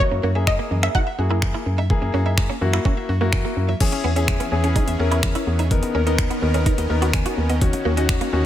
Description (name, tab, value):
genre	dance-pop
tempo	126 BPM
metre	4/4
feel	straight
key	unclear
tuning	A4 = 441 Hz
part	wide unison pluck	melody	0.0-3.3 s	C#5 to F#5	-24 LUFS	equal	digital delay
part	warm concert grand piano	accompaniment	0.0-8.4 s	A#3 to G#5	-25 LUFS	left 5 dB	none
part	mallet-like synth pluck	arpeggios	0.0-8.4 s	D#3 to E5	-31 LUFS	left 3 dB	chorus, sidechain pumping, digital delay
part	organ-like FM bass	bass	0.0-8.5 s	D#2 to F#2	-21 LUFS	equal	sidechain pumping
part	smooth R&B drum kit	drums	0.0-8.3 s	crash cymbal, finger snaps, hi-hat, kick drum	-22 LUFS	equal	none
part	direct-recorded clean electric guitar	riff	0.1-8.4 s	F#3 to F#4	-29 LUFS	right 6 dB	ensemble chorus
part	supersaw pad	sustained chords	3.8-8.5 s	D#3 to A#4	-30 LUFS	right 1 dB	sidechain pumping
room	digital ambience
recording	none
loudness	-18 LUFS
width	side -11 dB against mid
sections	0.0-3.8 A section; 3.8-8.5 B section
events	grand piano fill 6.9-7.6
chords	0.0 F#7; 3.8 E6; 5.7 Bmaj7/D#; 7.6 D#m7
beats	| 0.00 0.47 0.95 1.42 | 1.90 2.38 2.85 3.33 | 3.81 4.28 4.76 5.23 | 5.71 6.19 6.66 7.14 | 7.62 8.09